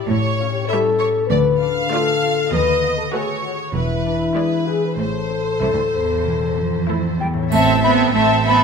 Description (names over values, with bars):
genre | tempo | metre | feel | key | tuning
cinematic, playful, whimsical film cue | 97 BPM | 4/4 | straight | A minor | A4 = 439 Hz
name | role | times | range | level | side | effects
warm French horn section | sustained chords | 0.0-6.9 s | E4 to B4 | -21 LUFS | left 4 dB | none
concert harp | arpeggios | 0.0-8.6 s | A2 to C5 | -24 LUFS | left 8 dB | none
rich studio violin section | second line | 0.1-8.6 s | A4 to F5 | -25 LUFS | equal | none
rich studio double bass section | bass | 0.1-8.6 s | E1 to D#2 | -24 LUFS | right 6 dB | none
warm studio cello section | bass | 0.1-8.6 s | C2 to B3 | -23 LUFS | right 5 dB | none
warm studio violin section | melody | 0.7-8.6 s | B4 to E5 | -22 LUFS | left 3 dB | none
rich studio viola section | accompaniment | 0.7-8.6 s | G3 to F#4 | -25 LUFS | right 3 dB | none
silver concert flute | second line | 7.2-8.6 s | G5 to B5 | -19 LUFS | right 1 dB | none
triangle | percussion | 7.5-8.6 s | none | -37 LUFS | right 1 dB | none
room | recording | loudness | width
moderate scoring stage reverb, RT60 2.0 s | none | -16 LUFS | side -6 dB against mid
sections
0.0-7.5 A section; 7.5-8.6 B section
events
none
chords
0.1 A7; 1.3 Dm; 2.5 B7/D#; 3.7 E7; 5.0 Am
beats
| 0.10 0.70 1.30 1.92 | 2.53 3.14 3.74 4.36 | 4.98 5.62 6.25 6.89 | 7.52 8.14